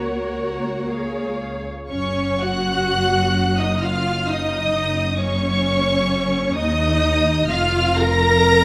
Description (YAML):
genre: classical, slow romantic movement for string orchestra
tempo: 56-66 BPM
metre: 3/4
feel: rubato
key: unclear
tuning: A4 = 442 Hz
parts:
  - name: rich symphonic violin section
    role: melody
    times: 0.0-8.6 s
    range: E#5 to Bb6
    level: -26 LUFS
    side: equal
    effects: none
  - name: rich symphonic violin section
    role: second line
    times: 0.0-8.6 s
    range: A#4 to Bb5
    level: -26 LUFS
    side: equal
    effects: none
  - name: warm symphonic viola section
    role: accompaniment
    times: 0.0-8.6 s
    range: C#4 to C#5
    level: -26 LUFS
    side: equal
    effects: none
  - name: rich symphonic cello section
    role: bass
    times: 0.0-8.6 s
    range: D#2 to A#3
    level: -27 LUFS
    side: equal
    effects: none
  - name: warm symphonic double bass section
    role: bass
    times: 0.0-8.6 s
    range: F1 to D#2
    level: -28 LUFS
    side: equal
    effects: none
room: wet scoring stage reverb, RT60 1.9 s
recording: none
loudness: -20 LUFS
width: mono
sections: 0.0-1.9 A section; 1.9-8.6 B section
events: none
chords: 0.0 F#/C#; 0.9 C#; 1.9 D#m9/F#; 4.7 D#m/F#; 7.5 Fsus4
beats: 0.89 | 1.90 2.91 3.83 | 4.75 5.66 6.57 | 7.50 8.45